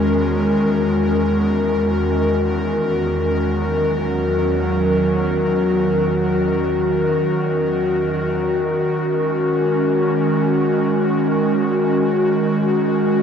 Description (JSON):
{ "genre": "ambient", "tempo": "free time", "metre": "none", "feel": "none", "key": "unclear", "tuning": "A4 = 438 Hz", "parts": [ { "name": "airy breathy pad", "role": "solo", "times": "0.0-13.2 s", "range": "E2 to A#4", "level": "-16 LUFS", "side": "equal", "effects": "chorus" } ], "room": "wet huge ambient reverb, RT60 8.2 s", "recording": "none", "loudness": "-16 LUFS", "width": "side -7 dB against mid", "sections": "0.0-8.4 A section; 8.4-13.2 B section", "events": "none", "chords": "0.0 E6; 8.4 G#7(no3)" }